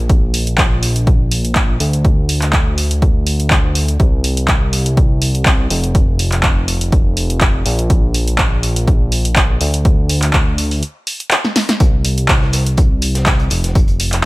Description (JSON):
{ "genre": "piano house", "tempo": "123 BPM", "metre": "4/4", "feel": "swing 54% on 16ths", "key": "unclear", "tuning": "A4 = 440 Hz", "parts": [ { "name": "fat analog bass", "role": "bass", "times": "0.0-14.3 s", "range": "F1 to D2", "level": "-16 LUFS", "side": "equal", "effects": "sidechain pumping" }, { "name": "electronic kick drum", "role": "drums", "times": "0.1-13.9 s", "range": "none", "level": "-13 LUFS", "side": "equal", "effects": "none" }, { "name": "punchy analog drum machine", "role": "drums", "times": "0.1-14.2 s", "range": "handclaps, hi-hat, snare drum", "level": "-17 LUFS", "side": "equal", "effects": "none" }, { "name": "crunchy breakbeat drum kit", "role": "drums", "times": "11.8-14.1 s", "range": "hi-hat, snare drum", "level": "-29 LUFS", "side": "equal", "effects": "sidechain pumping on hats, high-pass filter on hats, high-pass filter on snare, high-pass filter on room" } ], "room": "small room ambience", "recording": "none", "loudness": "-12 LUFS", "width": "side -21 dB against mid", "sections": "0.0-14.3 A section", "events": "break 10.8-11.8; drum fill 11.4-11.8", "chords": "none" }